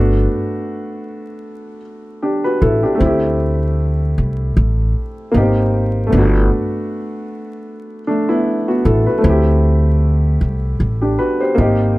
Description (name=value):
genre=lo-fi hip hop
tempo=77 BPM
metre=4/4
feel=swing 56% on 16ths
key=G major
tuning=A4 = 440 Hz
part: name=warm upright piano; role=accompaniment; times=0.0-12.0 s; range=A3 to C5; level=-18 LUFS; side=equal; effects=low-pass filter
part: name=upright bass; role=bass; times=0.0-12.0 s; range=G1 to D2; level=-15 LUFS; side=equal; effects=none
room=moderate small room reverb, RT60 0.5 s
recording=vinyl crackle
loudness=-14 LUFS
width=side -19 dB against mid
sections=0.0-12.0 A section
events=none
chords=0.0 Gmaj9; 3.0 D7sus4; 5.3 Abmaj9; 6.1 Gmaj9 (rootless); 9.2 D7sus4